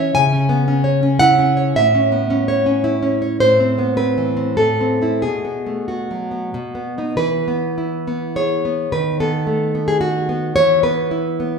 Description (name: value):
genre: romantic piece for solo classical guitar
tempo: 90-116 BPM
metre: 3/4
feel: rubato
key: E major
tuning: A4 = 438 Hz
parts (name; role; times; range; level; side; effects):
- nylon-string guitar; solo; 0.0-11.6 s; A2 to G#5; -15 LUFS; equal; none
room: wet recital hall reverb, RT60 1.5 s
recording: recorded in a church or concert hall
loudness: -15 LUFS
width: side -5 dB against mid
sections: 0.0-7.2 A section; 7.2-11.6 B section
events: none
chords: 0.1 C#m; 1.8 A; 3.4 Am; 5.2 B5; 6.5 B; 7.2 E; 8.9 B7/D#; 10.6 E5